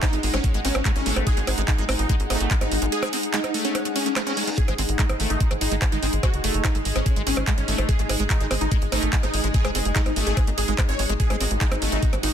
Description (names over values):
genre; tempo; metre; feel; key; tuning
psychedelic trance; 145 BPM; 4/4; straight; unclear; A4 = 440 Hz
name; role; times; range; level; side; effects
supersaw stab; melody; 0.0-12.3 s; C#4 to C#5; -29 LUFS; equal; phaser, sidechain pumping, tape echo
pulsing gated texture; sustained chords; 0.0-12.3 s; G#3 to G#4; -32 LUFS; equal; chorus, built-in reverb, sidechain pumping
liquid acid bass; riff; 0.0-12.2 s; G#3 to B#3; -32 LUFS; moving between left 4 dB and right 7 dB; chorus, auto-pan, sidechain pumping
electronic kick drum; drums; 0.0-12.1 s; none; -22 LUFS; equal; none
techno drum kit; drums; 0.0-12.3 s; handclaps, hi-hat, percussion blips; -27 LUFS; right 2 dB; none
warbly tape-like pad; texture; 0.0-12.3 s; D#4 to F#5; -32 LUFS; left 2 dB; chorus, built-in reverb, sidechain pumping
tight sequencer bass; bass; 0.1-12.3 s; F#1 to G#1; -26 LUFS; equal; none
reverse cymbal; sound effects; 4.1-4.6 s; none; -36 LUFS; right 2 dB; none
room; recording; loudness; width
little or no reverb; dense, heavily limited modern master; -20 LUFS; side -9 dB against mid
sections
0.0-12.3 A section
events
kick drops out 2.9-4.6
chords
0.0 G#5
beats
0.03 0.44 0.85 | 1.27 1.68 2.10 2.51 | 2.92 3.34 3.75 4.16 | 4.58 4.99 5.41 5.82 | 6.23 6.65 7.06 7.47 | 7.89 8.30 8.71 9.13 | 9.54 9.96 10.37 10.78 | 11.20 11.61 12.03